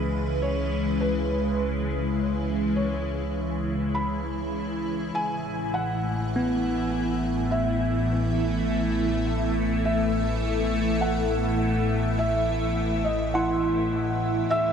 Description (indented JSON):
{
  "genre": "ambient",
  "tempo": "51 BPM",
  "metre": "4/4",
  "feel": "straight",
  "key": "unclear",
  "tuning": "A4 = 442 Hz",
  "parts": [
    { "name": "felt-muted upright piano", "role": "melody", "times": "0.0-14.7 s", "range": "B4 to B5", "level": "-31 LUFS", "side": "right 1 dB", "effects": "ping-pong delay" },
    { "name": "evolving wavetable pad", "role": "sustained chords", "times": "0.0-14.7 s", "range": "A2 to E5", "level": "-26 LUFS", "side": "left 1 dB", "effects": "ensemble chorus, built-in reverb, phaser" },
    { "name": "warm sub bass", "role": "bass", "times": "0.0-14.7 s", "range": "A1 to D2", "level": "-32 LUFS", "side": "equal", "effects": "none" },
    { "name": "bowed-like drone", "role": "drone", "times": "0.0-14.7 s", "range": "E3", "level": "-34 LUFS", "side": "right 2 dB", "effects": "built-in reverb" },
    { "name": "bell-like tine electric piano", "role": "arpeggios", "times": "6.4-14.7 s", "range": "B3 to E6", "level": "-30 LUFS", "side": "right 1 dB", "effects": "ping-pong delay" }
  ],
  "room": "wet huge ambient reverb, RT60 8.8 s",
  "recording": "none",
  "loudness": "-23 LUFS",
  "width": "side -7 dB against mid",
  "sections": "0.0-14.7 A section",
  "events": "fade-in on sub bass 0.0-14.7; fade-in on felt piano 0.0-14.7",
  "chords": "0.0 C#m7; 5.2 Am"
}